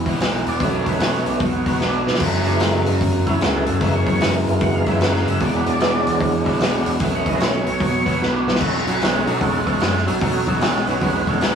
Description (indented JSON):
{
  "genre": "blues rock power trio and southern rock",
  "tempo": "150 BPM",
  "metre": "4/4",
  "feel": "swing 65% on 8ths",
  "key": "B mixolydian",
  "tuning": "A4 = 441 Hz",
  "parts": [
    { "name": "overdriven electric guitar", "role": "riff", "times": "0.0-11.6 s", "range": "E2 to B3", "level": "-22 LUFS", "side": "right 1 dB", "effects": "none" },
    { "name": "overdriven picked electric bass", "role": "bass", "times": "0.0-11.6 s", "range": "E1 to B2", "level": "-25 LUFS", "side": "left 1 dB", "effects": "none" },
    { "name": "vintage drum kit", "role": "drums", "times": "0.1-11.5 s", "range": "crash cymbal, hi-hat, kick drum, snare drum", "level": "-22 LUFS", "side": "left 1 dB", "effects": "none" },
    { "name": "overdriven tonewheel organ", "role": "sustained chords", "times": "0.5-11.6 s", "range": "D#3 to F#5", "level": "-22 LUFS", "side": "right 1 dB", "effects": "slow rotary speaker, chorus vibrato" }
  ],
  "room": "wet small room reverb, RT60 0.6 s",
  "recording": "rough rehearsal-room recording, tube saturation, small room ambience",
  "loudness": "-17 LUFS",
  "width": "side -7 dB against mid",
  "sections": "0.0-8.6 A section; 8.6-11.6 B section",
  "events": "tonewheel organ solo 0.0-8.6; drum fill 1.8-2.2, 8.2-8.6",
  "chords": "0.0 E7(no3); 0.6 B7; 2.2 F#7; 5.4 E7; 7.0 B7"
}